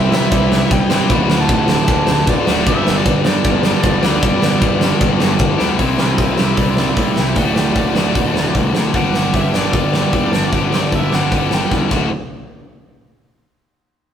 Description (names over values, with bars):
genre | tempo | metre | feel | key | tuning
punk rock | 152 BPM | 4/4 | straight | unclear | A4 = 440 Hz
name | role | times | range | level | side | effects
biting lead guitar | melody | 0.0-11.7 s | A4 to B5 | -23 LUFS | right 4 dB | overdrive
crunchy overdriven guitar | riff | 0.0-12.1 s | D2 to C4 | -22 LUFS | right 5 dB | none
tight distorted guitar | riff | 0.0-12.1 s | D2 to C5 | -19 LUFS | left 5 dB | distortion
fuzz picked electric bass | bass | 0.0-12.1 s | D1 to C3 | -21 LUFS | equal | overdrive
big rock drum kit | drums | 0.1-12.0 s | crash cymbal, hi-hat, kick drum, ride cymbal, snare drum | -17 LUFS | equal | none
room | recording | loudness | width
light reverb | rough rehearsal-room recording | -13 LUFS | side -9 dB against mid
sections
0.0-5.8 A section; 5.8-12.1 B section; 12.1-13.7 C section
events
drum fill 5.6, 11.7-12.1; lead electric guitar solo 5.8-12.1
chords
0.0 C; 1.1 D; 2.7 G; 5.8 C; 7.4 D; 8.9 G; 11.9 D; 12.1 N.C.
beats
0.33 0.71 | 1.10 1.49 1.88 2.27 | 2.66 3.06 3.44 3.83 | 4.23 4.62 5.01 5.40 | 5.79 6.18 6.58 6.97 | 7.37 7.76 8.15 8.55 | 8.95 9.34 9.74 10.13 | 10.53 10.93 11.32 11.72